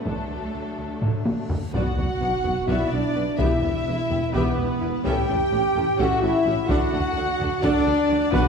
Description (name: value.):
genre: cinematic, epic orchestral film score.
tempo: 254 BPM (eighths).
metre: 7/8.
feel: straight.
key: unclear.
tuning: A4 = 440 Hz.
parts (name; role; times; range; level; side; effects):
warm symphonic violin section; melody; 0.0-8.5 s; F#4 to F#5; -37 LUFS; left 5 dB; none.
warm studio violin section; second line; 0.0-8.5 s; A3 to G5; -31 LUFS; left 2 dB; none.
warm symphonic cello section; bass; 0.0-8.4 s; E2 to A3; -34 LUFS; right 2 dB; none.
warm symphonic viola section; accompaniment; 0.1-8.5 s; D3 to B4; -31 LUFS; right 1 dB; none.
clear French horn section; sustained chords; 0.1-8.5 s; F#3 to G4; -24 LUFS; left 1 dB; none.
warm symphonic double bass section; bass; 0.1-8.4 s; E1 to D2; -33 LUFS; right 4 dB; none.
taiko ensemble; drums; 0.1-8.5 s; none; -28 LUFS; equal; none.
reverse cymbal and sub drop; sound effects; 1.6-3.4 s; none; -37 LUFS; left 1 dB; none.
dark tuba; bass; 1.7-8.4 s; E1 to D2; -31 LUFS; right 3 dB; none.
timpani; percussion; 8.3-8.5 s; B2; -26 LUFS; right 1 dB; none.
room: wet scoring stage reverb, RT60 1.6 s.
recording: heard from further back in the room.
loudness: -20 LUFS.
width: side -6 dB against mid.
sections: 0.0-1.7 A section; 1.7-8.5 B section.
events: drum fill 1.0-1.7; reverse cymbal 1.6; impact 1.7-3.4.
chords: 0.1 D; 1.7 Bm; 3.4 Em; 5.0 A7; 6.7 D.